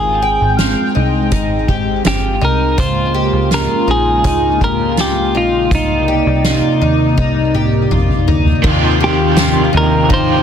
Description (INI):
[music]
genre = dream pop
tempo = 82 BPM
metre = 4/4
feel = straight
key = Eb mixolydian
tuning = A4 = 440 Hz
[part]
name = semi-hollow electric guitar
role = melody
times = 0.0-10.4 s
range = Eb4 to C5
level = -18 LUFS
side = equal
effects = digital delay
[part]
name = phased analog pad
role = sustained chords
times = 0.0-10.4 s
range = C3 to G5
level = -17 LUFS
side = left 1 dB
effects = phaser, chorus
[part]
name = picked twelve-string acoustic guitar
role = arpeggios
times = 0.0-10.4 s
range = Eb4 to G5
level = -21 LUFS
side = left 6 dB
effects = wide subtle chorus, digital delay
[part]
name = plucky analog bass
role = bass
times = 0.0-10.4 s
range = G1 to Eb2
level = -18 LUFS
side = equal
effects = none
[part]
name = soft-mallet drum kit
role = drums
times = 0.6-10.3 s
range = crash cymbal, hi-hat, kick drum, ride cymbal, snare drum, tambourine, toms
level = -18 LUFS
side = right 1 dB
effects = none
[part]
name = raw garage guitar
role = accompaniment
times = 8.6-10.4 s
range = Eb3 to G4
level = -18 LUFS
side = right 3 dB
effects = overdrive, tremolo, lush chorus
[sound]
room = light reverb, small room reverb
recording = dense, heavily limited modern master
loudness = -11 LUFS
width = side -8 dB against mid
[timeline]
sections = 0.0-8.6 A section; 8.6-10.4 B section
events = drum fill 7.2-8.6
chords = 0.0 Abmaj7; 2.8 Db6; 5.7 Cm9; 8.6 Eb69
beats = 0.59 1.32 2.05 | 2.79 3.52 4.25 4.98 | 5.71 6.44 7.17 7.91 | 8.64 9.37 10.10